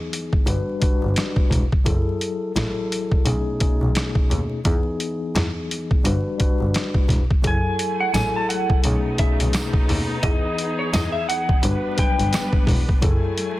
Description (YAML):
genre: hip hop, boom-bap hip-hop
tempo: 86 BPM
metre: 4/4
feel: swing 60% on 16ths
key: F# dorian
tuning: A4 = 445 Hz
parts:
  - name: mellow tine electric piano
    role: accompaniment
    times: 0.0-13.6 s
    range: B2 to B4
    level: -26 LUFS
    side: left 3 dB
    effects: medium stereo tremolo, high-pass filter, low-pass filter
  - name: boom bap sampler-style drum kit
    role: drums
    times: 0.1-13.6 s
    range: hi-hat, kick drum, rim click, snare drum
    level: -21 LUFS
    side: equal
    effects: none
  - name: clear double bass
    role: bass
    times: 0.5-13.1 s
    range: E1 to E2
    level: -24 LUFS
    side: equal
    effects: none
  - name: bright studio string section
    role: sustained chords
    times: 7.4-13.6 s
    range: E3 to G#5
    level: -32 LUFS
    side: right 1 dB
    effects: high-pass filter, low-pass filter
  - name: clean electric guitar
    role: melody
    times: 7.5-12.5 s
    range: C#5 to A5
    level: -26 LUFS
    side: right 1 dB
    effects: lush chorus, high-pass filter, low-pass filter, tape echo
  - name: tambourine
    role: percussion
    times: 8.1-12.5 s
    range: none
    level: -38 LUFS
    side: right 6 dB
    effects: none
room: small room ambience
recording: dense, heavily limited modern master, vinyl crackle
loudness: -18 LUFS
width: side -16 dB against mid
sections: 0.0-7.4 A section; 7.4-13.6 B section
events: none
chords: 0.5 Gmaj7; 1.9 F#m9; 3.3 B13; 4.7 Emaj7; 6.0 Gmaj7; 7.4 F#m9; 8.8 B13; 10.2 Emaj7; 11.6 Gmaj7; 13.0 F#m9